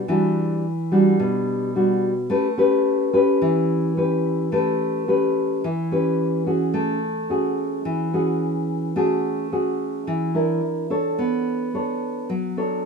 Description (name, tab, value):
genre	bossa nova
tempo	108 BPM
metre	4/4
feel	straight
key	A major from 6.7 s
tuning	A4 = 440 Hz
part	nylon-string guitar	solo	0.0-12.9 s	B2 to C#5	-19 LUFS	equal	none
room	light reverb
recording	minimal, uncompressed stereo recording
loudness	-19 LUFS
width	side -5 dB against mid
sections	0.0-6.7 A section; 6.7-12.9 B section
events	none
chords	0.0 Em9; 2.3 A9; 6.7 A6; 10.6 Aadd11/D; 11.2 Bm9